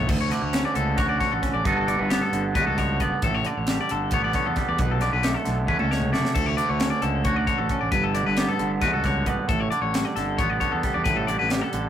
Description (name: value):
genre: math rock and midwest emo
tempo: 268 BPM (eighths)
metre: 7/8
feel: straight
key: D major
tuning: A4 = 440 Hz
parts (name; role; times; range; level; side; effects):
- twangy electric guitar; accompaniment; 0.0-11.9 s; D2 to A4; -26 LUFS; right 3 dB; none
- twangy electric guitar; arpeggios; 0.0-11.8 s; G4 to D5; -26 LUFS; left 5 dB; none
- fuzz fingered electric bass; bass; 0.0-11.9 s; F#1 to E2; -28 LUFS; equal; overdrive
- crisp fusion drum kit; drums; 0.1-11.8 s; crash cymbal, hi-hat, kick drum, snare drum, toms; -28 LUFS; equal; none
room: moderate small room reverb, RT60 0.5 s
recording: rough rehearsal-room recording, warm saturation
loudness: -21 LUFS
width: side -10 dB against mid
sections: 0.1-11.9 A section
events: drum fill 5.7-6.4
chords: 0.1 Dmaj7; 1.7 Gmaj9#11; 3.2 A9sus4; 4.8 Gadd9(#11)/B; 6.4 Dmaj7; 7.9 Gmaj9#11; 9.5 A9sus4